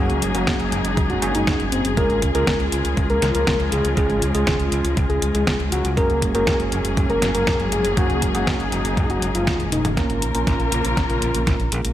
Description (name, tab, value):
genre	italo disco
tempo	120 BPM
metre	4/4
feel	straight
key	unclear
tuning	A4 = 439 Hz
part	soft octave-layered synth lead	melody	0.0-11.9 s	C4 to Bb4	-24 LUFS	left 1 dB	chorus, ping-pong delay
part	dark chamber string section	sustained chords	0.0-11.9 s	Db3 to Bb4	-25 LUFS	left 2 dB	vintage 12-bit sampler grit
part	bell-like tine electric piano	stabs	0.0-11.9 s	Ab3 to Bb4	-27 LUFS	right 5 dB	low-pass filter
part	overdriven fingered electric bass	bass	0.0-11.9 s	Gb1 to Db2	-24 LUFS	equal	tube saturation
part	detuned 8-bit digital drum machine	drums	0.1-11.9 s	hi-hat, snare drum, toms	-26 LUFS	equal	overdrive
part	electronic kick drum	drums	0.5-11.6 s	none	-23 LUFS	equal	overdrive
room	light reverb, digital ambience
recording	none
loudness	-18 LUFS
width	side -12 dB against mid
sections	0.0-10.0 A section; 10.0-11.9 B section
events	drum fill 9.6-10.0, 10.0-11.9; filter sweep on tine electric piano 10.0-11.9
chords	0.0 Gbadd9; 2.0 Db; 6.0 Gbadd9; 10.0 Bbm